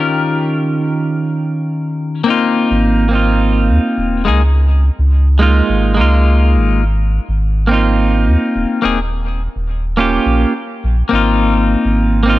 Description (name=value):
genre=sunset chillout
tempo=105 BPM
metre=4/4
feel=swing 54% on 16ths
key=Ab major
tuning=A4 = 439 Hz
part: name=clean electric guitar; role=accompaniment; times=0.0-12.4 s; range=Eb3 to Bb4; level=-14 LUFS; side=moving between left 4 dB and right 4 dB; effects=auto-pan, tape echo
part: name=warm sub bass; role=bass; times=2.7-12.4 s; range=Eb1 to Eb2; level=-13 LUFS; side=equal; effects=none
room=light reverb, digital ambience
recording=worn, warbling old tape, cassette tape, warbly pitch drift, low-pass filter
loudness=-12 LUFS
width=side -16 dB against mid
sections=0.0-2.3 A section; 2.3-12.4 B section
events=filter sweep on clean electric guitar 0.0-2.3; filter sweep 0.0-2.3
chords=0.0 Eb7; 2.3 Ab69; 4.3 Db6; 6.8 Ab69; 9.1 Eb7; 11.4 Ab69